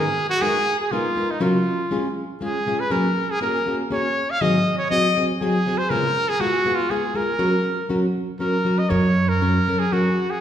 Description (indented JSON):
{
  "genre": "mexican folk, mariachi",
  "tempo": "120 BPM",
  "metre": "3/4",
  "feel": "straight",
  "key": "F# major",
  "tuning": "A4 = 437 Hz",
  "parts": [
    { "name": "clear trumpet", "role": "melody", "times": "0.0-10.4 s", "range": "D#4 to E#5", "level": "-22 LUFS", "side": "equal", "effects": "none" },
    { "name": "nylon-string guitar", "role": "accompaniment", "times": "0.0-10.1 s", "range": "G#2 to A#4", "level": "-22 LUFS", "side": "left 1 dB", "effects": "none" },
    { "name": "upright bass", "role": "bass", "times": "8.9-9.6 s", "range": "F#2", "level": "-21 LUFS", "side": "right 1 dB", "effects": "none" }
  ],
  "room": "wet recital hall reverb, RT60 1.5 s",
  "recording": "recorded in a church or concert hall",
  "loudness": "-19 LUFS",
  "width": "side -10 dB against mid",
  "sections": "0.0-10.4 A section",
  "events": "none",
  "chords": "0.0 G#madd9; 1.4 F#/C#; 1.9 C#; 2.9 F#add9; 4.4 G#7; 5.9 C#7 (rootless); 7.4 F#"
}